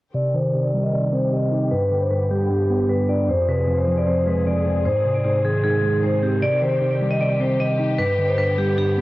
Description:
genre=hip hop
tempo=153 BPM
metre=4/4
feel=half-time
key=C harmonic minor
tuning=A4 = 441 Hz
part: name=vibraphone with hard mallets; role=melody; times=0.1-9.0 s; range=G4 to Eb5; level=-21 LUFS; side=equal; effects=low-pass filter
part: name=mellow tine electric piano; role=accompaniment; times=0.1-9.0 s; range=F2 to Eb4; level=-21 LUFS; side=equal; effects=low-pass filter
part: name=rich studio string section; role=sustained chords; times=0.1-9.0 s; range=D3 to Ab4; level=-31 LUFS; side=left 1 dB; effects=low-pass filter
room=light reverb, small room ambience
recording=dry, gritty hardware recording, cassette tape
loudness=-18 LUFS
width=side -18 dB against mid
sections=0.1-9.0 A section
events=filter sweep 0.1-9.0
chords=0.1 Cm; 1.7 G; 3.3 Fm; 4.9 Ab; 6.4 Cm; 8.0 G

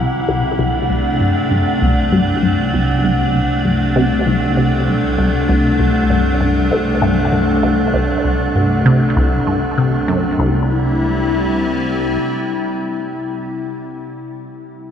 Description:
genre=ambient, sequencer-driven space music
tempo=98 BPM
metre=4/4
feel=straight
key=C lydian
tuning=A4 = 436 Hz
part: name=evolving wavetable pad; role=sustained chords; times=0.0-13.6 s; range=C3 to E4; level=-18 LUFS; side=left 1 dB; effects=chorus, built-in reverb
part: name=resonant blip pluck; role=riff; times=0.0-10.7 s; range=C2 to C3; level=-17 LUFS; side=equal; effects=phaser, analog delay
part: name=fat analog bass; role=bass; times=0.0-12.2 s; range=C2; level=-22 LUFS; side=equal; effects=none
part: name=wind-like tuned noise texture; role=texture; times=0.0-10.4 s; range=F#5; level=-25 LUFS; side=right 1 dB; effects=built-in reverb
room=wet cathedral reverb, RT60 6.3 s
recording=in a vast, echoing space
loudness=-14 LUFS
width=side -8 dB against mid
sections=0.0-10.4 A section; 10.4-12.8 B section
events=filter sweep on synth arpeggio sound 0.0-10.4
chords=0.0 C5; 10.4 C

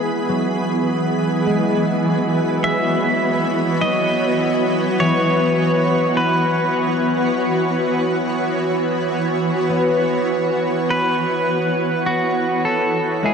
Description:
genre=ambient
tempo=51 BPM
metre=3/4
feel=straight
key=E major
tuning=A4 = 440 Hz
part: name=shimmering ambient pad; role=sustained chords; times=0.0-13.3 s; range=E3 to B5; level=-19 LUFS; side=right 1 dB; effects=chorus, built-in reverb
part: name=concert harp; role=arpeggios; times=0.0-13.3 s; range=E3 to E4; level=-24 LUFS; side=left 2 dB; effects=tape echo
part: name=pedal steel guitar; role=melody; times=2.6-13.3 s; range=F#4 to E5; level=-21 LUFS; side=equal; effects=tape echo
room=wet huge ambient reverb, RT60 7.6 s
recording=dark, warm production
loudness=-16 LUFS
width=side -6 dB against mid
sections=0.0-13.3 A section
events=none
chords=0.0 E

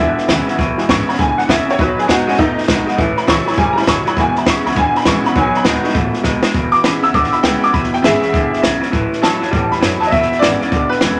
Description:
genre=rockabilly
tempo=201 BPM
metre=4/4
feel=swing 63% on 8ths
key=E major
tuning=A4 = 440 Hz
part: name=honky-tonk upright piano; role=accompaniment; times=0.0-6.1 s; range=F#3 to C#6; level=-20 LUFS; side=equal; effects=none
part: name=picked steel-string acoustic guitar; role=accompaniment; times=0.0-11.2 s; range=E2 to F#4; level=-26 LUFS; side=equal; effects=none
part: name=electric guitar through a small old amp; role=riff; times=0.0-11.2 s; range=E2 to A3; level=-21 LUFS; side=equal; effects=none
part: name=upright bass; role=bass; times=0.0-11.2 s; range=E1 to B2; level=-29 LUFS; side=equal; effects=none
part: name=compact cocktail drum kit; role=drums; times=0.2-11.1 s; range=hi-hat, kick drum, snare drum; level=-20 LUFS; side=equal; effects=none
part: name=clear upright piano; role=melody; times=6.7-11.2 s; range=G#4 to E6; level=-18 LUFS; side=equal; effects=none
room=moderate large studio reverb, RT60 1.1 s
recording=none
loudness=-15 LUFS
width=mono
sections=0.0-6.5 A section; 6.5-11.2 B section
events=honky-tonk piano solo 0.0-6.5; drum fill 6.3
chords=0.0 E; 1.8 B; 3.0 A; 4.2 E; 5.4 B; 6.5 E; 8.9 A; 10.1 E

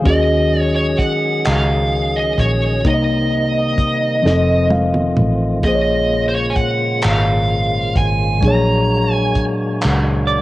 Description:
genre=slow six-eight R&B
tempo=43 BPM (dotted quarters)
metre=6/8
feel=straight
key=Bb minor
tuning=A4 = 439 Hz
part: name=mellow tine electric piano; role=accompaniment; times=0.0-10.4 s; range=Bb2 to F5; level=-18 LUFS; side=left 1 dB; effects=medium stereo tremolo, cassette tape
part: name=percussive tonewheel organ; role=sustained chords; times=0.0-10.4 s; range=Db3 to C#5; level=-27 LUFS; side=equal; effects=overdrive, fast rotary speaker, cassette tape
part: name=vintage muted fingered electric bass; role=bass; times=0.0-10.4 s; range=F1 to Eb2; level=-19 LUFS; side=equal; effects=none
part: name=high-gain lead guitar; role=melody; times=0.1-9.4 s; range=C5 to Bb5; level=-20 LUFS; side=right 1 dB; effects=distortion, cassette tape
part: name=warm soul drum kit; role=drums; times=0.1-10.0 s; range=handclaps, hi-hat, kick drum, snare drum, toms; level=-20 LUFS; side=equal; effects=none
part: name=clean electric guitar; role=second line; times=10.3-10.4 s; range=D5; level=-16 LUFS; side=right 4 dB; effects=tremolo, cassette tape
room=light reverb, studio ambience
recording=home recording on cassette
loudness=-14 LUFS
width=side -17 dB against mid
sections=0.0-10.4 A section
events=drum fill 4.2-5.6; tine electric piano fill 4.2-5.6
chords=0.1 Ebm7; 2.9 Cm7; 4.2 F7; 5.6 Bbm7; 8.4 Bb7alt

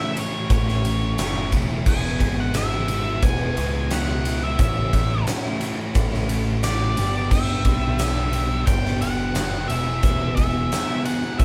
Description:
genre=classic rock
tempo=88 BPM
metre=4/4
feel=straight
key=unclear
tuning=A4 = 439 Hz
part: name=octave-fuzz lead guitar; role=melody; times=0.0-11.4 s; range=C#5 to G#5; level=-31 LUFS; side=equal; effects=distortion
part: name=picked steel-string acoustic guitar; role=accompaniment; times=0.0-11.4 s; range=E2 to G4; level=-38 LUFS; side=equal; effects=none
part: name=biting overdriven guitar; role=riff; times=0.0-11.4 s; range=E2 to G#4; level=-32 LUFS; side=equal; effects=none
part: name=crunchy overdriven guitar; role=riff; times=0.0-11.4 s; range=G2 to E4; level=-33 LUFS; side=equal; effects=none
part: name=big rock drum kit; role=drums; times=0.2-11.4 s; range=crash cymbal, kick drum, ride cymbal, snare drum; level=-26 LUFS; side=equal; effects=none
part: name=tube shaker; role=percussion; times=0.2-11.4 s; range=none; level=-46 LUFS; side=equal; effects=none
part: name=growling picked electric bass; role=bass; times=0.5-11.4 s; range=E1 to C#2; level=-27 LUFS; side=equal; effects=overdrive
room=moderate small room reverb, RT60 0.5 s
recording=band playing live in one room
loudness=-22 LUFS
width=mono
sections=0.0-11.4 A section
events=none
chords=0.0 A; 1.9 E; 4.6 A; 7.0 G; 9.7 Eadd9

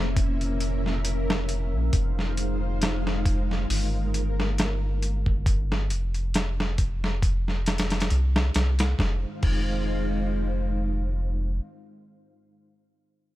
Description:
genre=trip hop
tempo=68 BPM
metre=4/4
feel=swing 55% on 16ths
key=F minor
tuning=A4 = 440 Hz
part: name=string machine, cellos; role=sustained chords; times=0.0-12.3 s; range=Ab3 to F5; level=-31 LUFS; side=left 1 dB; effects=ensemble chorus
part: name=soft dub sub bass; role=bass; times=0.0-11.6 s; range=F1 to C2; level=-26 LUFS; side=equal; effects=none
part: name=dusty soul sampler-style drum kit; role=drums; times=0.2-9.7 s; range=crash cymbal, hi-hat, kick drum, snare drum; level=-26 LUFS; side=equal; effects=overdrive
room=little or no reverb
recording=none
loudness=-23 LUFS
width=side -16 dB against mid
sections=0.0-9.0 A section; 9.0-12.5 B section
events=none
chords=0.0 C7b9/F; 1.9 Fm7; 5.5 C5/F; 9.0 Fm7

